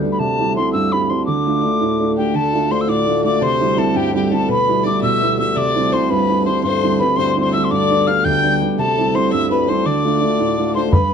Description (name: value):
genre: celtic folk, Celtic jig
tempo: 112 BPM (dotted quarters)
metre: 6/8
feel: straight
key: D dorian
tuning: A4 = 440 Hz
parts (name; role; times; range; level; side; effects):
- warm concert grand piano; accompaniment; 0.0-11.1 s; D2 to F4; -18 LUFS; right 4 dB; none
- pedal harmonium; drone; 0.0-11.0 s; D2 to D3; -24 LUFS; left 3 dB; none
- mellow wooden whistle; melody; 0.1-11.1 s; G5 to G6; -20 LUFS; left 1 dB; none
- rich fiddle; second line; 2.2-11.1 s; G4 to G5; -22 LUFS; left 8 dB; slapback echo
- bodhran; percussion; 10.9-11.1 s; none; -14 LUFS; equal; none
room: wet studio reverb, RT60 0.6 s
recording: dark, warm production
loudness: -14 LUFS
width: side -7 dB against mid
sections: 0.0-2.3 A section; 2.3-10.9 A section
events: none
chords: 0.2 C; 1.3 Dm; 3.4 C; 4.5 Em; 5.6 C; 7.7 G; 8.8 C; 9.9 Dm